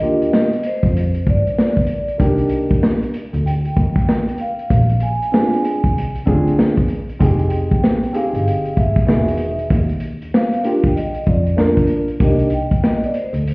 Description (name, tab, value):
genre	hip hop, jazz-hop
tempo	96 BPM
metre	4/4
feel	swing 62% on 16ths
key	unclear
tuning	A4 = 439 Hz
part	vibraphone with medium mallets	melody	0.0-13.3 s	C5 to Ab5	-23 LUFS	equal	none
part	dark upright piano	accompaniment	0.0-12.5 s	D3 to Bb4	-19 LUFS	equal	none
part	warm double bass	bass	0.0-13.5 s	E1 to G2	-18 LUFS	equal	none
part	vintage drum kit	drums	0.0-13.5 s	hi-hat, kick drum, snare drum	-17 LUFS	equal	vintage 12-bit sampler grit
room	moderate studio reverb, RT60 0.6 s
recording	heard muffled through a wall, stone room reverb, vinyl crackle, EQ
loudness	-14 LUFS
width	side -26 dB against mid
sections	0.0-13.5 A section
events	vibraphone solo 0.0-13.5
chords	0.0 Ebmaj9; 2.2 Cm7; 4.7 Bb7; 7.2 Fm9; 9.1 Emaj9; 9.7 Ebmaj7sus2; 12.2 Cm7